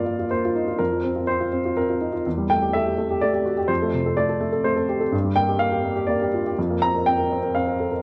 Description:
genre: neoclassical minimalist piano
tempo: 124 BPM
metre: 3/4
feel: rubato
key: unclear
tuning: A4 = 440 Hz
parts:
  - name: warm baby grand piano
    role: solo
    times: 0.0-8.0 s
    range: E2 to Bb5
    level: -22 LUFS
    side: equal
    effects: none
room: moderate plate reverb, RT60 3.4 s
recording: worn, warbling old tape, cassette tape, warbly pitch drift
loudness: -22 LUFS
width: mono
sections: 0.0-8.0 A section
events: none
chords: 0.0 Gm7; 0.8 F7sus4; 2.3 A5/E; 3.7 Dm7/F; 5.1 Gm7; 6.6 Fsus4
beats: 0.31 | 0.80 1.28 1.77 | 2.25 2.74 3.21 | 3.69 4.17 4.65 | 5.13 5.60 6.08 | 6.57 7.05 7.54

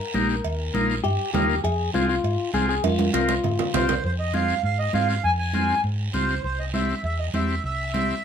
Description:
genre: latin, cumbia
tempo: 200 BPM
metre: 4/4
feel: straight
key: F minor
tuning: A4 = 440 Hz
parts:
  - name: clean electric guitar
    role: second line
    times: 0.0-3.8 s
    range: F4 to Bb4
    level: -27 LUFS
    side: left 6 dB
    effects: none
  - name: combo organ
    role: accompaniment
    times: 0.1-8.2 s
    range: Bb3 to Bb4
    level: -26 LUFS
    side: left 3 dB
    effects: none
  - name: hollow-body short-scale fingered electric bass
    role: bass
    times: 0.1-8.1 s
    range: Bb1 to Ab2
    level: -27 LUFS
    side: equal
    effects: none
  - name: congas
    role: percussion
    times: 0.1-8.1 s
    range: none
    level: -28 LUFS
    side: right 4 dB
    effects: none
  - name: guiro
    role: percussion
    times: 0.1-8.2 s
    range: none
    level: -37 LUFS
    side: right 5 dB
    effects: none
  - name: cowbell and timbales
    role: percussion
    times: 0.4-4.0 s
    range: none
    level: -28 LUFS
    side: right 8 dB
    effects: none
  - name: accordion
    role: melody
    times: 3.8-8.2 s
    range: C5 to Ab5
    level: -26 LUFS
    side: right 2 dB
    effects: none
room: wet studio ambience, RT60 0.5 s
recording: minimal, uncompressed stereo recording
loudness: -21 LUFS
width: side -8 dB against mid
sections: 0.0-4.0 A section; 4.0-8.2 B section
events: drum fill 2.8-4.0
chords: 0.0 Eb; 1.6 Fm; 6.4 C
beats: 0.15 | 0.45 0.74 1.04 1.34 | 1.64 1.94 2.24 2.54 | 2.84 3.14 3.44 3.74 | 4.04 4.34 4.64 4.94 | 5.24 5.54 5.84 6.14 | 6.44 6.74 7.04 7.34 | 7.64 7.94 8.24

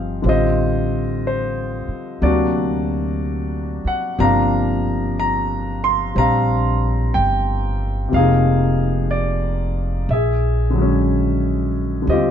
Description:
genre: jazz ballad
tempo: 61 BPM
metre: 4/4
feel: swing 66% on 8ths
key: unclear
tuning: A4 = 440 Hz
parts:
  - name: clear concert grand piano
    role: accompaniment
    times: 0.0-12.3 s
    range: C3 to C6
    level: -19 LUFS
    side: left 1 dB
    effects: none
  - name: upright bass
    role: bass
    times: 0.0-12.3 s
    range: F1 to Eb2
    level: -20 LUFS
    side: right 1 dB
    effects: none
room: light reverb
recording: dark, warm production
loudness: -17 LUFS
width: side -9 dB against mid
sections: 0.0-12.3 A section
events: none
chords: 0.2 Am7b5; 2.2 Daug7; 4.2 Gm7; 8.1 Fm7; 10.1 Bb7alt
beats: | 0.24 1.23 2.22 3.20 | 4.19 5.17 6.16 7.14 | 8.12 9.11 10.09 11.08 | 12.07

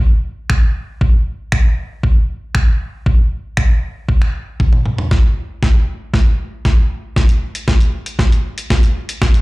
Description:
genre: pop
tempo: 117 BPM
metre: 4/4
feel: straight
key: none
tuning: none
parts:
  - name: boom bap sampler-style drum kit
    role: drums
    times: 0.5-9.4 s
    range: finger snaps, hi-hat, kick drum, snare drum, toms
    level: -12 LUFS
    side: equal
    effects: none
room: little or no reverb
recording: played on a big sound system in a bare room, large studio reverb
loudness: -14 LUFS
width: side -22 dB against mid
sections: 0.0-5.1 A section; 5.1-9.4 B section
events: drum fill 4.6-5.1, 5.1-9.4; build-up 5.1-9.4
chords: none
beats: 0.50 | 1.01 1.52 2.04 2.55 | 3.06 3.58 4.09 4.60 | 5.11 5.63 6.14 6.65 | 7.17 7.68 8.19 8.70 | 9.22

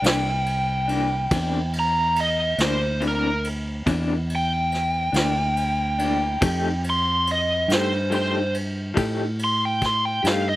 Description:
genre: slow blues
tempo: 47 BPM (dotted quarters)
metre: 12/8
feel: straight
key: C mixolydian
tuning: A4 = 440 Hz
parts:
  - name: biting lead guitar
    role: melody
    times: 0.0-10.6 s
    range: Bb4 to C6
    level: -23 LUFS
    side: equal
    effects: overdrive, slapback echo
  - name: electric guitar through a small old amp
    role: accompaniment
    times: 0.0-10.5 s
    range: C3 to G4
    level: -26 LUFS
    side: left 3 dB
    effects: tremolo
  - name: fingered electric bass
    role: bass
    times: 0.0-10.6 s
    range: C2 to A2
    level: -26 LUFS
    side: equal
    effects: none
  - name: vintage brush drum kit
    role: drums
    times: 0.0-10.5 s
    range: kick drum, ride cymbal, snare drum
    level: -28 LUFS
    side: equal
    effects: none
room: little or no reverb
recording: recorded outdoors, with no room sound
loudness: -20 LUFS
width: side -16 dB against mid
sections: 0.0-10.6 A section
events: lead electric guitar solo 0.0-10.6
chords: 0.0 C9; 6.4 F9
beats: 0.02 | 1.30 2.58 3.86 5.14 | 6.42 7.69 8.97 10.24

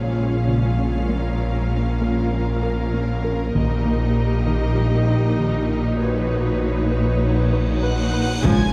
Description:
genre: cinematic, hybrid orchestral and electronic film score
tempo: 98 BPM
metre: 4/4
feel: straight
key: unclear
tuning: A4 = 440 Hz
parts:
  - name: warm symphonic violin section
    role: second line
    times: 0.0-8.7 s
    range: Ab4 to Ab5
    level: -32 LUFS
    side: equal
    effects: none
  - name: rich symphonic viola section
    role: accompaniment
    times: 0.0-8.7 s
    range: F3 to G4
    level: -30 LUFS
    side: equal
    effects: none
  - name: ethereal airy pad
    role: sustained chords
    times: 0.0-8.7 s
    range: Ab3 to F5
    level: -31 LUFS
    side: equal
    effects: ensemble chorus, built-in reverb, tremolo
  - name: tight sequenced synth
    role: arpeggios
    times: 0.0-8.6 s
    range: Db3 to B4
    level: -31 LUFS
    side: equal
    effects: none
  - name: rich symphonic cello section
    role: bass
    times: 0.0-8.5 s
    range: Bb2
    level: -27 LUFS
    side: equal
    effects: none
  - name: rich symphonic double bass section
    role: bass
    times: 0.0-8.5 s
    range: Bb1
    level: -27 LUFS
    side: equal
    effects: none
  - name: snarling distorted saw bass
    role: bass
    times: 0.0-8.7 s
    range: Bb1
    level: -28 LUFS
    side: equal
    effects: distortion
  - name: taiko ensemble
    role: drums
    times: 3.6-4.7, 8.4-8.7 s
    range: none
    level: -26 LUFS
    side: equal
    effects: none
  - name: cymbal swell and impact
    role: sound effects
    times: 7.3-8.7 s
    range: none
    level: -33 LUFS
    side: equal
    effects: none
  - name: rich symphonic violin section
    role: melody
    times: 7.8-8.7 s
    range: F#6 to Ab6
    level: -34 LUFS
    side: equal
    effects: none
  - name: mellow tuba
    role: bass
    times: 8.4-8.6 s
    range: Bb1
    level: -30 LUFS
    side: equal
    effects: none
room: moderate scoring stage reverb, RT60 1.6 s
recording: dark, warm production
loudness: -21 LUFS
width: mono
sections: 0.0-8.4 A section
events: cymbal swell 7.3-8.4; impact 8.4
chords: 0.0 Db/Bb; 1.1 Bbm; 3.5 Eb/Bb; 6.0 Badd9/Bb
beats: 0.49 | 1.10 1.71 2.32 2.94 | 3.55 4.16 4.77 5.38 | 6.00 6.61 7.22 7.83 | 8.45

